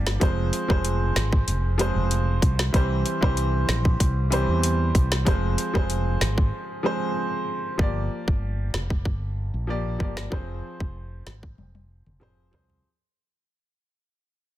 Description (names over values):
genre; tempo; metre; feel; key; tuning
dancehall; 95 BPM; 4/4; straight; unclear; A4 = 440 Hz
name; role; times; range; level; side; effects
clear grand piano; accompaniment; 0.0-12.9 s; E3 to D5; -27 LUFS; equal; none
mellow fretless electric bass; bass; 0.0-12.8 s; F1 to E2; -25 LUFS; equal; none
island pop drum kit; drums; 0.1-12.8 s; hi-hat, kick drum, snare drum, toms; -23 LUFS; equal; overdrive
room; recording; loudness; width
little or no reverb; dense, heavily limited modern master; -22 LUFS; side -13 dB against mid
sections
0.0-7.8 A section; 7.8-12.8 B section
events
break 6.5-7.8; fade-out 7.8-12.8; drum fill 11.6-12.8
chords
0.2 Fm; 2.7 C; 5.3 Fm; 7.8 Gm7; 10.3 Fm